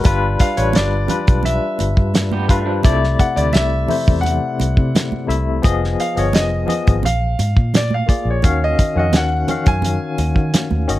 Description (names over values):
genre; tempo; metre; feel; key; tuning
lush 1970s-style soul; 86 BPM; 4/4; straight; unclear; A4 = 438 Hz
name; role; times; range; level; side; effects
barky tine electric piano; accompaniment; 0.0-11.0 s; C3 to Gb5; -21 LUFS; left 5 dB; medium tremolo
cloth-damped thuddy drum kit; drums; 0.0-11.0 s; hi-hat, kick drum, snare drum; -16 LUFS; equal; none
congas; percussion; 0.0-10.9 s; none; -26 LUFS; right 6 dB; none
vintage muted fingered electric bass; bass; 0.1-11.0 s; F1 to Eb3; -19 LUFS; equal; none
warm concert grand piano; melody; 0.4-10.9 s; Db5 to Ab5; -23 LUFS; right 1 dB; none
electric guitar through a small old amp; riff; 2.3-3.0 s; F3 to G4; -24 LUFS; right 7 dB; tremolo
room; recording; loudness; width
little or no reverb; none; -14 LUFS; side -15 dB against mid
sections
0.0-11.0 A section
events
none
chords
0.1 G7; 2.8 C69; 5.6 Fm7b5; 7.0 Bb7; 8.4 Ebm9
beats
| 0.05 0.75 1.45 2.15 | 2.85 3.54 4.24 4.94 | 5.64 6.34 7.04 7.74 | 8.44 9.13 9.83 10.53